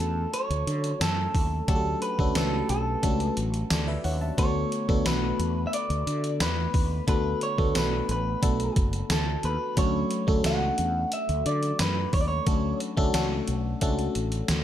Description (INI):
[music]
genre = 1980s-style pop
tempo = 89 BPM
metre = 4/4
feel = straight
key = D major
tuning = A4 = 440 Hz
[part]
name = electric guitar at the edge of break-up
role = melody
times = 0.0-12.8 s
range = A4 to F#5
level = -30 LUFS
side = right 1 dB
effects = tape echo
[part]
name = FM electric piano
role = accompaniment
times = 0.0-14.6 s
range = D3 to A5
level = -30 LUFS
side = left 2 dB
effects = chorus, phaser
[part]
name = mellow fretless electric bass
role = bass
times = 0.0-14.6 s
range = F#1 to D3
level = -29 LUFS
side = equal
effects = none
[part]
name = gated 80s digital drum machine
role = drums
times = 0.0-14.6 s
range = hi-hat, kick drum, snare drum, tambourine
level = -27 LUFS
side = equal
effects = gated reverb, gated reverb snare, overdrive
[sound]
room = light reverb, digital ambience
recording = none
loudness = -24 LUFS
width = side -11 dB against mid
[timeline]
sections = 0.0-14.6 A section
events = none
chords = 0.0 Dmaj7; 4.4 Bm7; 9.8 Dmaj7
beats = 0.34 1.01 | 1.68 2.36 3.03 3.71 | 4.38 5.05 5.73 6.40 | 7.08 7.75 8.43 9.10 | 9.77 10.45 11.12 11.80 | 12.47 13.14 13.82 14.49